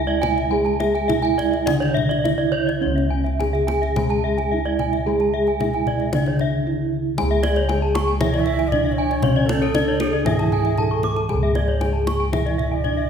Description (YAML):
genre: Balinese gamelan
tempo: 104-116 BPM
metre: 4/4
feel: straight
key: C# pelog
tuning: A4 = 438 Hz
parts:
  - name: gamelan-type bronze metallophone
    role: melody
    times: 0.0-13.1 s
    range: C#4 to A4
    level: -24 LUFS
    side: right 2 dB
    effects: none
  - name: gamelan-type bronze metallophone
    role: accompaniment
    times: 0.0-13.1 s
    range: C#3 to G#3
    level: -29 LUFS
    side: equal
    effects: none
  - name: gamelan-type bronze metallophone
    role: arpeggios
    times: 0.0-13.1 s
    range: A4 to C#6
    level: -27 LUFS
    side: left 5 dB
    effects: none
  - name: gamelan-type bossed gongs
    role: bass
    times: 0.0-13.1 s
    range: C#2 to G#4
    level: -23 LUFS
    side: equal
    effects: none
  - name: gamelan-type bronze metallophone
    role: arpeggios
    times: 0.1-12.7 s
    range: A4 to D6+35c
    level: -27 LUFS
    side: right 3 dB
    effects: none
  - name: kendang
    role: percussion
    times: 0.2-13.0 s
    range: none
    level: -28 LUFS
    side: left 2 dB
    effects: none
  - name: breathy mellow bansuri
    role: second line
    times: 8.2-13.1 s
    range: G#4 to E5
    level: -27 LUFS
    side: right 4 dB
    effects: none
room: wet recital hall reverb, RT60 1.8 s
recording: recorded in a church or concert hall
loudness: -18 LUFS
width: side -7 dB against mid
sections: 0.0-7.2 A section; 7.2-13.1 B section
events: none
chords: none